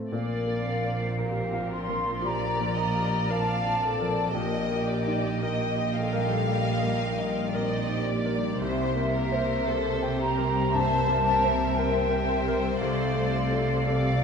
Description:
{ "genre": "cinematic", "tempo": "57 BPM", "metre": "4/4", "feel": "rubato", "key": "Bb major", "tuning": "A4 = 440 Hz", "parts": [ { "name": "clear concert grand piano", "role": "accompaniment", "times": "0.0-14.2 s", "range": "C2 to G5", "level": "-32 LUFS", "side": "equal", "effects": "none" }, { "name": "dark studio violin section", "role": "melody", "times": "0.1-14.2 s", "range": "Bb4 to E5", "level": "-37 LUFS", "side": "left 2 dB", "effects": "none" }, { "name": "mellow flute section", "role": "second line", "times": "0.1-14.2 s", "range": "E5 to C6", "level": "-30 LUFS", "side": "equal", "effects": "none" }, { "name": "warm studio viola section", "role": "accompaniment", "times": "0.1-14.2 s", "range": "G3 to C5", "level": "-34 LUFS", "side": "left 1 dB", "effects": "none" }, { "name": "concert harp", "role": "arpeggios", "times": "0.1-14.2 s", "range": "Bb2 to C5", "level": "-33 LUFS", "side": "left 8 dB", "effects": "none" }, { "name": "warm studio cello section", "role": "bass", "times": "0.1-14.2 s", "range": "Bb2 to C3", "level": "-32 LUFS", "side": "right 3 dB", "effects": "none" }, { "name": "warm studio double bass section", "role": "bass", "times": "0.1-14.2 s", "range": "Bb1 to C2", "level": "-33 LUFS", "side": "right 3 dB", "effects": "none" }, { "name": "rich studio violin section", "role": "second line", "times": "2.2-14.2 s", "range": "G4 to F5", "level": "-34 LUFS", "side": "left 3 dB", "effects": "none" } ], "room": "wet scoring stage reverb, RT60 1.9 s", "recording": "nothing above 11.0 kHz", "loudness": "-24 LUFS", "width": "side -6 dB against mid", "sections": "0.1-14.2 A section", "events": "none", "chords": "0.1 Bb; 4.4 Eb/Bb; 8.6 C7; 12.8 F6/C" }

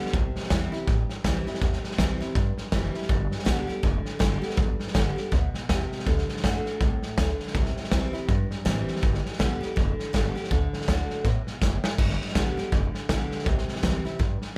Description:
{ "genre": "rockabilly", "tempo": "162 BPM", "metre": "4/4", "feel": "swing 60% on 8ths", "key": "G major", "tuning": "A4 = 436 Hz", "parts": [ { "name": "picked steel-string acoustic guitar", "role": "accompaniment", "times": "0.0-14.6 s", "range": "G2 to G4", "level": "-34 LUFS", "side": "equal", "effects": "none" }, { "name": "upright bass", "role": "bass", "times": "0.1-14.4 s", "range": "F1 to A2", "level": "-31 LUFS", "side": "equal", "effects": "none" }, { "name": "raw garage drum kit", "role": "drums", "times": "0.1-14.5 s", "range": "crash cymbal, hi-hat, kick drum, snare drum", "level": "-28 LUFS", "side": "equal", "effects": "none" } ], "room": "little or no reverb", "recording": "none", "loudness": "-26 LUFS", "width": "mono", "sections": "0.0-12.0 A section; 12.0-14.6 A section", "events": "drum fill 11.6-12.0", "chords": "0.1 C; 3.1 G; 6.1 D; 7.5 C; 9.0 G; 10.5 D; 12.0 G; 13.5 C" }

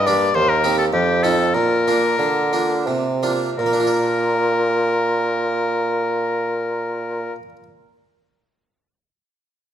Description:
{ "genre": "classical, baroque-style sonata movement with continuo", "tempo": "83-108 BPM", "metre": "3/4", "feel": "straight", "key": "Bb major", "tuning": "A4 = 440 Hz", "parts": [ { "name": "clear oboe", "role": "melody", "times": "0.0-7.3 s", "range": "G4 to D5", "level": "-21 LUFS", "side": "left 3 dB", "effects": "none" }, { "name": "harpsichord", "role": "accompaniment", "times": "0.0-7.6 s", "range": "Eb2 to D5", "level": "-23 LUFS", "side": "right 3 dB", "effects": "none" }, { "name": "warm bassoon", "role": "bass", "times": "0.0-7.3 s", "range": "Eb2 to D3", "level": "-20 LUFS", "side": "right 1 dB", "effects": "none" } ], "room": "moderate recital hall reverb, RT60 1.4 s", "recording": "none", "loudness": "-17 LUFS", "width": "side -10 dB against mid", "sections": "0.0-3.6 A section; 3.6-7.9 B section", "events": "slowing down 0.0-3.6", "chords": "0.3 Cm/Eb; 0.9 F7; 1.5 Bb" }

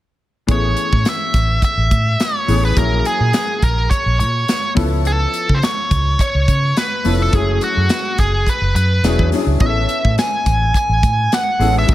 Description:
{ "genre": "polished 1980s jazz-funk pop", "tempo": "105 BPM", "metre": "4/4", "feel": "swing 54% on 16ths", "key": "A major", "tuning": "A4 = 440 Hz", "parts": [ { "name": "nasal lead guitar with a parked wah", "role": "melody", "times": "0.5-11.9 s", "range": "F#4 to G#5", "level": "-19 LUFS", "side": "right 1 dB", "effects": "overdrive" }, { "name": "clear grand piano", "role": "accompaniment", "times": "0.5-11.9 s", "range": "E3 to A4", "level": "-23 LUFS", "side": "left 3 dB", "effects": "ensemble chorus" }, { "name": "vintage muted fingered electric bass", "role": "bass", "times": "0.5-11.9 s", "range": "E1 to C#3", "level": "-17 LUFS", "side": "equal", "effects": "none" }, { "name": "crisp fusion drum kit", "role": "drums", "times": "0.5-11.9 s", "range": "hi-hat, kick drum, snare drum", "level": "-19 LUFS", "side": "equal", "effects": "gated reverb" } ], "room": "small room ambience", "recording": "none", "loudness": "-14 LUFS", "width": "side -14 dB against mid", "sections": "0.5-11.9 A section", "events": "none", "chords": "0.5 Amaj9; 2.8 F#9/A#; 4.8 C#7alt; 7.3 F#m9; 9.0 E13; 9.6 Amaj9" }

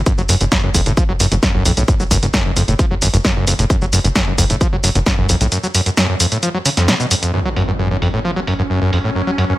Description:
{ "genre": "driving peak-time techno", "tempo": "132 BPM", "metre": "4/4", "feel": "straight", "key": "F# harmonic minor", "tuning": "A4 = 440 Hz", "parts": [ { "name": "tight sequencer bass", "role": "bass", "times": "0.0-5.5 s", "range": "F#1 to B1", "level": "-18 LUFS", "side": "equal", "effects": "sidechain pumping" }, { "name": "screaming distorted acid line", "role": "riff", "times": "0.1-9.5 s", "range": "E#2 to F#3", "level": "-18 LUFS", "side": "equal", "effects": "distortion, chorus, sidechain pumping, digital delay" }, { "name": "electronic kick drum", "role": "drums", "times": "0.1-5.2 s", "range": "none", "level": "-18 LUFS", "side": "equal", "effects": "none" }, { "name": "punchy analog drum machine", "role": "drums", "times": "0.1-9.5 s", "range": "hi-hat, shaker, snare drum", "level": "-18 LUFS", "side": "equal", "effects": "low-pass filter on snare, sidechain pumping on hats, low-pass filter on hats, sidechain pumping on perc, low-pass filter on perc, low-pass filter on room" }, { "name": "swarming drone", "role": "drone", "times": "8.1-9.6 s", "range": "F#3 to C#4", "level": "-24 LUFS", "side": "equal", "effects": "built-in reverb, sidechain pumping" }, { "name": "impact", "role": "sound effects", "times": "7.3-9.2 s", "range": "none", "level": "-25 LUFS", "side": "equal", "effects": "none" } ], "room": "light reverb, digital ambience", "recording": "none", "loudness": "-13 LUFS", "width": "side -16 dB against mid", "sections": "0.0-7.3 A section; 7.3-9.6 B section", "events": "impact 7.3-9.2", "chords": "0.0 N.C.; 7.3 F#5" }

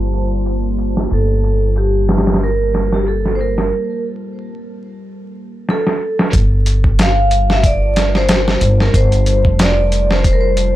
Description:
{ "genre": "trip hop", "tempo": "92 BPM", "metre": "4/4", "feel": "swing 56% on 16ths", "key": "G minor", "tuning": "A4 = 439 Hz", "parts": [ { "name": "deep dark ambient pad", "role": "sustained chords", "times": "0.0-10.8 s", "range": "G3 to A5", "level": "-25 LUFS", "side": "equal", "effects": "chorus, built-in reverb, vintage 12-bit sampler grit" }, { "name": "upright bass", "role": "bass", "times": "0.0-10.8 s", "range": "F1 to G1", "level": "-16 LUFS", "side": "equal", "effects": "none" }, { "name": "dusty soul sampler-style drum kit", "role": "drums", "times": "0.1-10.7 s", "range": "hi-hat, kick drum, snare drum", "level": "-16 LUFS", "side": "equal", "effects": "overdrive, low-pass filter on hats, low-pass filter on snare, low-pass filter on kick, low-pass filter on room" }, { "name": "vibraphone with medium hard mallets", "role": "melody", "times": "1.1-10.8 s", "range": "G4 to F5", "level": "-19 LUFS", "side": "right 1 dB", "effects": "tape echo" } ], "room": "little or no reverb", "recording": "dry, gritty hardware recording, transformer saturation, vinyl crackle, low-pass filter", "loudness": "-12 LUFS", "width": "side -14 dB against mid", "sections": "0.0-6.3 A section; 6.3-10.8 B section", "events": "filter sweep 0.0-6.3; break 3.7-6.3; drum fill 5.7-6.3", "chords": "0.0 Gm11" }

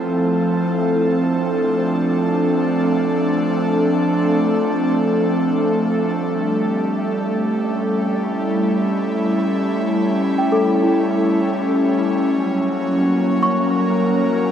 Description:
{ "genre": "ambient", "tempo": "78 BPM", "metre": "4/4", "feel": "straight", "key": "unclear", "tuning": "A4 = 440 Hz", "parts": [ { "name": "airy breathy pad", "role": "sustained chords", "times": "0.0-14.5 s", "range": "F3 to Bb4", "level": "-16 LUFS", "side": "equal", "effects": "chorus" }, { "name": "small celesta", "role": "arpeggios", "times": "0.0-14.5 s", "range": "E4 to Db6", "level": "-24 LUFS", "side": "left 1 dB", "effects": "diffuse ambient delay" } ], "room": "wet huge ambient reverb, RT60 7.9 s", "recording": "none", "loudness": "-16 LUFS", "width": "side -9 dB against mid", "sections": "0.0-14.5 A section", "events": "fade-in on celesta 0.0-14.5", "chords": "0.0 Dm7; 6.1 A7; 12.3 Gbmaj7" }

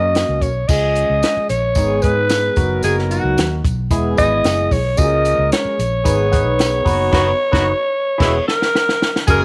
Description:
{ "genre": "uptempo 1960s-style soul", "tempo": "112 BPM", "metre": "4/4", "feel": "straight", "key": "unclear", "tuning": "A4 = 440 Hz", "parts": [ { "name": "growling alto saxophone", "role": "melody", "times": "0.0-9.4 s", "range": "F#4 to D#5", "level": "-20 LUFS", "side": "equal", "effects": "none" }, { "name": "barky tine electric piano", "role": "accompaniment", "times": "0.0-9.4 s", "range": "F#3 to B4", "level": "-24 LUFS", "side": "equal", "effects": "overdrive, phaser" }, { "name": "vintage muted fingered electric bass", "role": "bass", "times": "0.0-9.4 s", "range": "E1 to G#2", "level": "-23 LUFS", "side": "equal", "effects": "tube saturation" }, { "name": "compact cocktail drum kit", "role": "drums", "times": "0.1-9.4 s", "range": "crash cymbal, hi-hat, kick drum, snare drum", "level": "-21 LUFS", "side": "equal", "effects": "none" }, { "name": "tambourine", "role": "percussion", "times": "0.2-9.4 s", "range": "none", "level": "-35 LUFS", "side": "equal", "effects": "none" }, { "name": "mellow horn section", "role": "second line", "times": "0.7-9.4 s", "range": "B2 to A#4", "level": "-28 LUFS", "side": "equal", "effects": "none" } ], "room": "small room ambience", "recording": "none", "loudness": "-17 LUFS", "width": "mono", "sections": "0.7-9.3 A section", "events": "drum fill 7.1-9.3; band accent 7.1-9.3", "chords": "0.0 F#; 0.7 C#; 1.8 G#m; 2.6 B/F#; 3.9 E; 5.0 C#; 6.1 G#m; 6.9 B/F#; 8.2 E; 8.7 N.C." }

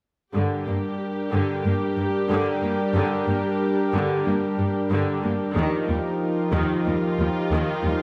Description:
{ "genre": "cinematic", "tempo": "92 BPM", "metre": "4/4", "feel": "straight", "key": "G minor", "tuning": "A4 = 440 Hz", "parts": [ { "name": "rich symphonic viola section", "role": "accompaniment", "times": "0.3-8.0 s", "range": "D3 to G4", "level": "-30 LUFS", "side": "equal", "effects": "none" }, { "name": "warm analog pad", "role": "sustained chords", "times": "0.3-8.0 s", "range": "F3 to Bb4", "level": "-26 LUFS", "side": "equal", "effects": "chorus" }, { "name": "warm symphonic cello section", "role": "bass", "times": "0.3-7.9 s", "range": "Eb2 to G2", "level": "-29 LUFS", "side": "equal", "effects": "none" } ], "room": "moderate scoring stage reverb, RT60 1.6 s", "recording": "none", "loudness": "-24 LUFS", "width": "mono", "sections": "0.3-8.0 A section", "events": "none", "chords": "0.3 Gm; 5.6 Ebadd9" }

